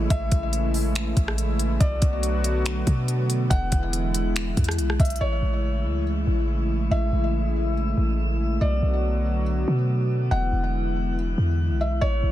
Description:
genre	hip hop, atmospheric cloud-rap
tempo	141 BPM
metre	4/4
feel	half-time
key	A major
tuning	A4 = 445 Hz
part	warm analog pad	sustained chords	0.0-12.3 s	C#3 to F#4	-28 LUFS	equal	chorus, sidechain pumping
part	clean 808-style bass	bass	0.0-12.3 s	E1 to B2	-24 LUFS	equal	none
part	felt-muted upright piano	melody	0.1-12.3 s	C#5 to F#5	-31 LUFS	left 1 dB	ping-pong delay
part	smooth R&B drum kit	drums	0.1-5.2 s	finger snaps, hi-hat, kick drum, rim click	-25 LUFS	equal	soft clipping on snare
room	little or no reverb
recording	dense, heavily limited modern master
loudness	-21 LUFS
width	side -13 dB against mid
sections	0.0-5.2 A section; 5.2-12.3 B section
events	none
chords	0.0 Amaj7; 1.8 Bm7; 3.5 E7; 5.2 Amaj7; 8.6 Bm7; 10.3 E7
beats	| 0.10 0.53 0.95 1.38 | 1.81 2.23 2.66 3.08 | 3.51 3.93 4.36 4.78 | 5.21 5.63 6.06 6.49 | 6.91 7.34 7.76 8.19 | 8.61 9.04 9.46 9.89 | 10.32 10.74 11.17 11.59 | 12.02

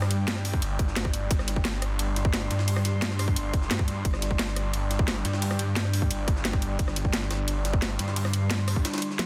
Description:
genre	dark technical drum and bass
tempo	175 BPM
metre	4/4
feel	straight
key	unclear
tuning	A4 = 442 Hz
part	deep dark ambient pad	sustained chords	0.0-9.3 s	G3 to C6	-37 LUFS	equal	chorus, built-in reverb, sidechain pumping
part	snarling distorted saw bass	bass	0.0-8.8 s	G1 to G2	-30 LUFS	equal	distortion, overdrive, sidechain pumping
part	drum and bass drum kit	drums	0.0-9.3 s	hi-hat, rim click, snare drum, toms	-33 LUFS	equal	overdrive
part	jungle sampler-style drum kit	drums	0.0-9.3 s	hi-hat, ride cymbal, snare drum	-40 LUFS	equal	high-pass filter on snare, high-pass filter on cymbals, high-pass filter on hats, high-pass filter on room
part	electronic kick drum	drums	0.5-8.8 s	none	-28 LUFS	equal	overdrive
room	light reverb, digital ambience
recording	dense, heavily limited modern master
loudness	-27 LUFS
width	mono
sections	0.0-9.3 A section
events	break 8.8-9.3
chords	0.0 G5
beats	0.28 0.62 0.96 | 1.31 1.65 1.99 2.33 | 2.68 3.02 3.36 3.71 | 4.05 4.39 4.74 5.08 | 5.42 5.76 6.11 6.45 | 6.79 7.13 7.48 7.82 | 8.16 8.51 8.85 9.19

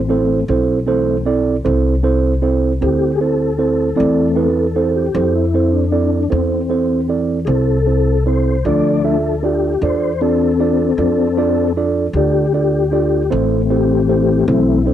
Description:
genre	blues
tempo	51 BPM (dotted quarters)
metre	12/8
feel	straight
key	A minor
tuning	A4 = 439 Hz
part	mellow tonewheel organ	sustained chords	0.0-14.9 s	E3 to D5	-18 LUFS	left 7 dB	slow rotary speaker, chorus vibrato, cassette tape
part	upright bass	bass	0.0-14.9 s	A1 to F2	-19 LUFS	left 1 dB	none
part	mellow tine electric piano	accompaniment	0.1-14.9 s	C4 to E5	-17 LUFS	right 5 dB	cassette tape
room	light reverb, small room ambience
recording	home recording on cassette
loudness	-13 LUFS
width	side -11 dB against mid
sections	0.0-14.9 A section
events	tonewheel organ solo 0.0-14.9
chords	0.0 Am; 8.7 Dm; 13.3 Am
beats	0.48 1.65 2.81 | 3.98 5.15 6.32 7.48 | 8.65 9.82 10.98 12.15 | 13.32 14.48

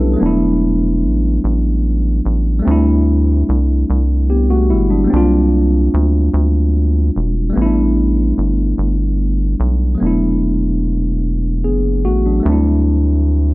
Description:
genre	slow six-eight R&B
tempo	49 BPM (dotted quarters)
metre	6/8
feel	straight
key	unclear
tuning	A4 = 441 Hz
part	tine electric piano	accompaniment	0.0-13.5 s	F#3 to B4	-16 LUFS	equal	none
part	rubbery square bass	bass	0.0-13.5 s	E1 to D2	-14 LUFS	equal	none
room	light reverb, digital ambience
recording	none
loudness	-12 LUFS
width	side -20 dB against mid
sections	0.0-10.0 A section; 10.0-13.5 B section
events	none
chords	0.2 E9sus4; 2.6 D9sus4; 5.1 C9sus4; 7.5 A9sus4; 10.0 E9sus4; 12.4 D9sus4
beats	| 0.20 1.43 | 2.65 3.87 | 5.10 6.32 | 7.55 8.77 | 10.00 11.22 | 12.45

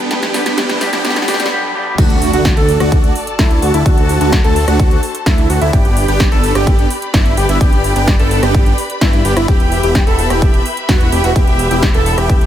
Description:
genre	EDM, festival progressive house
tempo	128 BPM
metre	4/4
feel	straight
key	G major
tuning	A4 = 442 Hz
part	rich symphonic string section	sustained chords	0.0-12.5 s	G3 to B5	-24 LUFS	left 1 dB	sidechain pumping
part	big supersaw lead	riff	0.0-12.5 s	A3 to A4	-19 LUFS	right 1 dB	phaser, sidechain pumping, ping-pong delay
part	riser, noise sweep and impact	sound effects	0.0-3.9 s	none	-26 LUFS	equal	none
part	big-room dance drum kit	drums	0.1-12.5 s	crash cymbal, hi-hat, rim click, snare drum	-20 LUFS	equal	none
part	clean electric guitar	accompaniment	0.3-2.0 s	G2 to G4	-21 LUFS	left 2 dB	sidechain pumping, ping-pong delay
part	wide unison lead	arpeggios	2.0-12.5 s	E4 to A4	-18 LUFS	right 1 dB	wide subtle chorus, sidechain pumping, ping-pong delay
part	fat analog bass	bass	2.0-12.5 s	E1 to G2	-17 LUFS	equal	sidechain pumping
part	electronic kick drum	drums	2.0-12.4 s	none	-12 LUFS	equal	none
room	light reverb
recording	high-pass filter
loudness	-10 LUFS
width	side -11 dB against mid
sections	0.0-2.0 A section; 2.0-12.5 B section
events	build-up 0.0-2.0; drum fill 0.0-1.5; riser 0.0-2.0; noise sweep 0.1-2.0; break 1.5-2.0; drop 2.0-12.5; impact 2.0-3.9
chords	0.0 G; 2.0 D; 5.7 G; 9.5 Em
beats	| 0.11 0.58 1.05 1.51 | 1.98 2.45 2.92 3.39 | 3.86 4.33 4.80 5.26 | 5.73 6.20 6.67 7.14 | 7.61 8.08 8.55 9.01 | 9.48 9.95 10.42 10.89 | 11.36 11.83 12.30

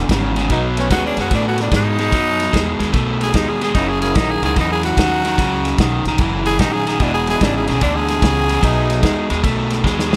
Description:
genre	electric blues shuffle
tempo	148 BPM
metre	4/4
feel	swing 66% on 8ths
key	B mixolydian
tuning	A4 = 439 Hz
part	overdriven electric guitar	riff	0.0-10.2 s	E2 to A3	-22 LUFS	equal	none
part	upright bass	bass	0.0-10.2 s	E1 to A2	-24 LUFS	equal	none
part	warm soul drum kit	drums	0.1-10.2 s	kick drum, ride cymbal, snare drum	-23 LUFS	equal	none
part	warm horn section	stabs	0.5-1.2, 3.8-4.5, 7.0-9.3 s	F#3 to E4	-29 LUFS	equal	tape echo
part	growling tenor saxophone	second line	0.9-9.3 s	D4 to G#4	-23 LUFS	equal	none
room	light reverb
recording	none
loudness	-17 LUFS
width	mono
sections	0.0-10.2 A section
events	tenor saxophone solo 0.0-10.2; drum fill 9.9-10.2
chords	0.0 E; 0.5 B7; 3.8 F#7; 7.0 E7; 8.6 B7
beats	0.09 | 0.50 0.91 1.31 1.72 | 2.13 2.54 2.94 3.35 | 3.75 4.16 4.57 4.98 | 5.38 5.79 6.20 6.60 | 7.01 7.42 7.82 8.23 | 8.63 9.04 9.45 9.85

